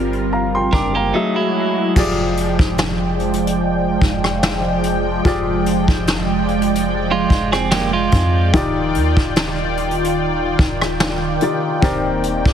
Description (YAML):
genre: contemporary R&B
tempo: 73 BPM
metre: 4/4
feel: swing 54% on 16ths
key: F dorian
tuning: A4 = 441 Hz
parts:
  - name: warm baby grand piano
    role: accompaniment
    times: 0.0-12.5 s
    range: Eb3 to D6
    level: -22 LUFS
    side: left 3 dB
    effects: none
  - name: lush unison pad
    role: sustained chords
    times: 0.0-12.5 s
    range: Eb3 to G5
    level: -20 LUFS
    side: right 2 dB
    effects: chorus, phaser, sidechain pumping
  - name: soft 808-style bass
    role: bass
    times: 0.0-12.5 s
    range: Eb1 to F2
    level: -23 LUFS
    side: equal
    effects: none
  - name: vintage brush drum kit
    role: drums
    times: 0.1-12.5 s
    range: crash cymbal, hi-hat, kick drum, rim click, snare drum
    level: -19 LUFS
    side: equal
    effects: none
  - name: clean electric guitar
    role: arpeggios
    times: 0.7-1.9, 7.1-8.5 s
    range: Gb3 to Bb4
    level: -21 LUFS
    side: right 6 dB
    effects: ping-pong delay
room: studio ambience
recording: heavily compressed radio sound, multiband compression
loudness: -15 LUFS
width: side -9 dB against mid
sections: 0.0-2.0 A section; 2.0-12.5 B section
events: drums muted 1.1-2.0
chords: 0.0 Gm7; 1.1 Gbm9; 2.0 Fm69; 8.5 Ebmaj9; 11.8 Cm9/Eb